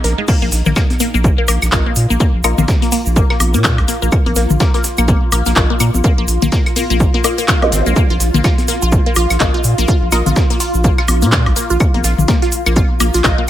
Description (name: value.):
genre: minimal techno.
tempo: 125 BPM.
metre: 4/4.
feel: swing 58% on 16ths.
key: unclear.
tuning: A4 = 440 Hz.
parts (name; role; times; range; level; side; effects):
resonant blip pluck; riff; 0.0-13.4 s; Ab3 to Bb4; -20 LUFS; left 2 dB; phaser, sidechain pumping, dub echo.
saturated sub bass; bass; 0.0-13.3 s; Ab1 to Bb2; -16 LUFS; equal; sidechain pumping.
breakbeat sampler-style drum kit; drums; 0.0-13.4 s; hi-hat, shaker, snare drum; -28 LUFS; left 1 dB; high-pass filter on snare, high-pass filter on perc, high-pass filter on hats.
techno drum kit; drums; 0.0-13.4 s; crash cymbal, handclaps, hi-hat; -20 LUFS; equal; none.
swarming drone; texture; 0.0-13.5 s; Eb4 to F4; -24 LUFS; left 1 dB; built-in reverb, sidechain pumping.
electronic kick drum; drums; 0.3-13.4 s; none; -15 LUFS; equal; none.
tube shaker; percussion; 0.3-13.4 s; none; -26 LUFS; right 5 dB; none.
electronic toms, claves, congas and woodblock; percussion; 0.7-13.1 s; none; -20 LUFS; left 3 dB; tape echo.
filtered dub chord stab; stabs; 1.7-2.6, 5.6-10.2, 13.2-13.4 s; F4 to Eb5; -21 LUFS; left 2 dB; phaser, wide subtle chorus, tape echo.
zap; sound effects; 7.6-7.7 s; none; -22 LUFS; equal; none.
room: digital ambience.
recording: none.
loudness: -11 LUFS.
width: side -12 dB against mid.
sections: 0.0-13.5 A section.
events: none.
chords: 0.0 Bbsus4.